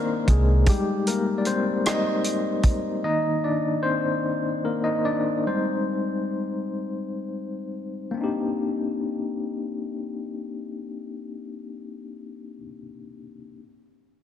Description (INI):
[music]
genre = slow six-eight R&B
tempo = 41-51 BPM (dotted quarters)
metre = 6/8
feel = straight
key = C minor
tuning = A4 = 440 Hz
[part]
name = overdriven tine electric piano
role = accompaniment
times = 0.0-13.6 s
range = Eb3 to Eb5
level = -25 LUFS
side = left 2 dB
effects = fast tremolo
[part]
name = vintage muted fingered electric bass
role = bass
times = 0.3-0.6 s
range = C2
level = -18 LUFS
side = right 1 dB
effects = none
[part]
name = warm soul drum kit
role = drums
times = 0.3-2.8 s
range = hi-hat, kick drum, rim click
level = -24 LUFS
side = equal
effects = none
[sound]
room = wet church reverb, RT60 2.8 s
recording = dreamy mix soaked in reverb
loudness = -23 LUFS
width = side -10 dB against mid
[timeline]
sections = 0.0-8.2 A section; 8.2-11.1 B section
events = tine electric piano solo 0.0-8.2; slowing down 3.0-8.2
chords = 0.0 Cm9; 0.7 Abmaj9#11/G; 3.0 Cm9; 5.4 Abmaj7/G; 8.2 Cm9